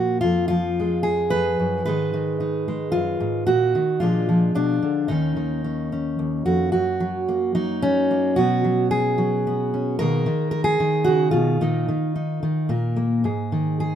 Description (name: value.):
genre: folk, solo fingerstyle acoustic guitar.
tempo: 110 BPM.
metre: 3/4.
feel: straight.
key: unclear.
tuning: A4 = 439 Hz.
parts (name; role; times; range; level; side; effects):
fingerpicked steel-string acoustic guitar; solo; 0.0-13.9 s; Eb2 to Cb5; -19 LUFS; equal; none.
room: light reverb.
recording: minimal, uncompressed stereo recording.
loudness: -19 LUFS.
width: side -9 dB against mid.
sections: 0.0-6.7 A section; 6.7-13.9 B section.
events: none.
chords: 0.2 Fdim; 1.9 Abm; 3.5 Ebm/Bb; 4.0 Bb7; 5.1 Ebm9; 6.7 Gb; 8.4 Bsus2; 10.0 Abmadd9/Cb; 11.6 Bbsus4; 12.7 N.C.; 13.2 Ab5.